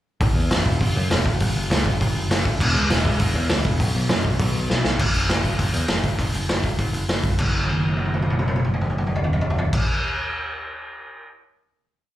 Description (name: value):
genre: punk rock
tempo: 200 BPM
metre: 4/4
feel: straight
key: unclear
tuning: A4 = 440 Hz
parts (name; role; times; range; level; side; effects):
- modern bright picked electric bass; bass; 0.2-9.8 s; E1 to F#2; -23 LUFS; equal; none
- raw garage drum kit; drums; 0.2-11.3 s; crash cymbal, hi-hat, kick drum, snare drum, toms; -21 LUFS; equal; none
room: little or no reverb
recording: live gig heard through the venue's PA, club reverb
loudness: -19 LUFS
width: side -14 dB against mid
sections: 0.2-5.0 riff; 5.0-7.4 outro; 7.4-9.8 final note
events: drum fill 4.7, 7.5-9.7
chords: none